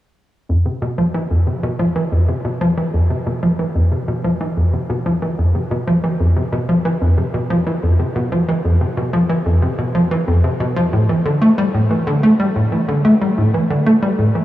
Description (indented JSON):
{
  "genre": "ambient",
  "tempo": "92 BPM",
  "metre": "4/4",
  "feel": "straight",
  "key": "F lydian",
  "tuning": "A4 = 442 Hz",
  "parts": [
    { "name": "tight sequencer bass", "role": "solo", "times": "0.5-14.4 s", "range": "F2 to A3", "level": "-14 LUFS", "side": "equal", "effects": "analog chorus, analog delay" }
  ],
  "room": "wet huge ambient reverb, RT60 8.3 s",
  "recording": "worn, warbling old tape, cassette tape, warbly pitch drift, small room ambience",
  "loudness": "-15 LUFS",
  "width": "side -14 dB against mid",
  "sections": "0.5-14.4 A section",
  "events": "none",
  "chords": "none",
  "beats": "| 0.49 1.14 1.79 2.45 | 3.10 3.75 4.40 5.06 | 5.71 6.36 7.01 7.67 | 8.32 8.97 9.62 10.27 | 10.93 11.58 12.23 12.88 | 13.53 14.19"
}